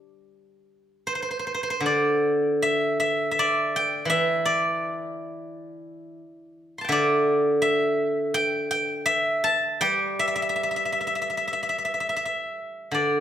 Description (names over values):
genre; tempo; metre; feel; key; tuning
chinese traditional, Chinese solo plucked strings; 73-86 BPM; 4/4; rubato; G zhi mode; A4 = 439 Hz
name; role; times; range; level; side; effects
steel-string zither; solo; 0.0-13.2 s; D3 to C6; -22 LUFS; equal; none
room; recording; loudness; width
moderate recital hall reverb, RT60 1.4 s; none; -22 LUFS; side -10 dB against mid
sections
0.0-1.0 A section; 1.0-13.2 B section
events
none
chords
none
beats
0.24 | 1.04 1.82 2.59 3.34 | 4.08 4.80 5.50 6.20 | 6.90 7.62 8.36 9.09 | 9.83 10.58 11.35 12.14 | 12.93